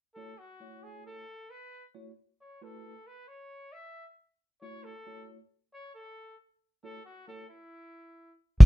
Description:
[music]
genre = progressive instrumental, band music in an uneven meter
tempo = 135 BPM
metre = 5/4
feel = straight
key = A major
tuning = A4 = 443 Hz
[part]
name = mellow trumpet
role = melody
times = 0.1-8.3 s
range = E4 to E5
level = -48 LUFS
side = left 1 dB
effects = none
[part]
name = tine electric piano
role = accompaniment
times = 0.2-8.7 s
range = A3 to C#5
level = -52 LUFS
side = right 1 dB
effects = fast stereo tremolo
[part]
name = upright bass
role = bass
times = 8.6-8.7 s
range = A1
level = -21 LUFS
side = equal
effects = none
[part]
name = cloth-damped thuddy drum kit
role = drums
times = 8.6-8.7 s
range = hi-hat, kick drum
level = -9 LUFS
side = equal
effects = none
[sound]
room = little or no reverb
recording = band playing live in one room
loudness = -47 LUFS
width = side -20 dB against mid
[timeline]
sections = 0.0-8.7 A section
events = none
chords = 0.0 A6

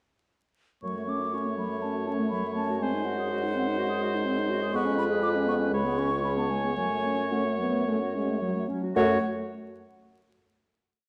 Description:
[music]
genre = quick classical-period movement for wind quintet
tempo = 108-126 BPM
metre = 4/4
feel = rubato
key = F# minor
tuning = A4 = 440 Hz
[part]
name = mellow hollow concert flute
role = melody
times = 0.8-9.3 s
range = F#5 to D6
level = -37 LUFS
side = equal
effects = none
[part]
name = clear oboe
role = second line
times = 0.8-9.2 s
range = B4 to C#5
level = -36 LUFS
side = equal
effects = none
[part]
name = mellow clarinet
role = accompaniment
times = 0.8-9.2 s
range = F#3 to G#4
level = -34 LUFS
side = equal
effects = none
[part]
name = warm French horn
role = accompaniment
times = 0.8-9.2 s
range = F#3 to B3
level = -34 LUFS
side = equal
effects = none
[part]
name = mellow bassoon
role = bass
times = 0.8-9.2 s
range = C#2 to F#2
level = -33 LUFS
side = equal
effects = none
[sound]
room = wet recital hall reverb, RT60 1.5 s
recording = dark, warm production, vinyl crackle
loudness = -28 LUFS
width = mono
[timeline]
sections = 0.8-9.0 A section; 9.0-11.1 final chord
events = slowing down 3.8-9.0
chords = 0.8 F#m; 2.8 G#7/F#; 4.8 C#7/E#; 5.7 C#7; 6.8 F#m

